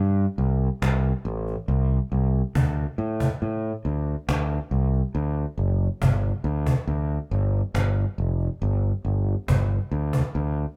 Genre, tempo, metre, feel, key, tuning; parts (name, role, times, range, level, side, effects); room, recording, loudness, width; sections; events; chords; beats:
post-rock; 69 BPM; 4/4; straight; A4 = 440 Hz
growling fingered electric bass; bass; 0.0-10.6 s; F1 to A2; -25 LUFS; equal; overdrive
cajon; drums; 0.8-10.3 s; -28 LUFS; equal
light reverb; band playing live in one room; -25 LUFS; mono
0.0-10.8 A section
0.82 1.69 | 2.55 3.41 4.28 5.14 | 6.01 6.88 7.74 8.61 | 9.48 10.34